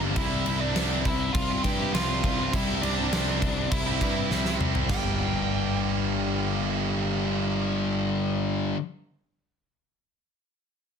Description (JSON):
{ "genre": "quiet-loud alternative rock", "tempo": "102 BPM", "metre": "4/4", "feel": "straight", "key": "G dorian", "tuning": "A4 = 439 Hz", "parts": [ { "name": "thick fuzz guitar", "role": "riff", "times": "0.0-8.8 s", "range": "G2 to E4", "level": "-30 LUFS", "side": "left 13 dB", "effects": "distortion" }, { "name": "tight distorted guitar", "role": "riff", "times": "0.0-8.8 s", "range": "G2 to E4", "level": "-31 LUFS", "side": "right 17 dB", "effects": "distortion" }, { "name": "fuzz picked electric bass", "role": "bass", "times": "0.0-8.7 s", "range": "G1 to G2", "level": "-30 LUFS", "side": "right 1 dB", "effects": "overdrive" }, { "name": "nasal lead guitar with a parked wah", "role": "melody", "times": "0.2-8.0 s", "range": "D4 to G5", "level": "-32 LUFS", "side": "right 4 dB", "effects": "overdrive, slapback echo" }, { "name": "huge arena drum kit", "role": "drums", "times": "0.2-5.0 s", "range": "crash cymbal, kick drum, snare drum, splash cymbal, toms", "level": "-29 LUFS", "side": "equal", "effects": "none" } ], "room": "light reverb", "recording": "dense, heavily limited modern master", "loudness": "-24 LUFS", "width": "side -7 dB against mid", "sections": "0.0-4.9 A section; 4.9-7.3 B section", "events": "drum fill 4.3-4.9", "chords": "0.2 C; 4.9 Gm" }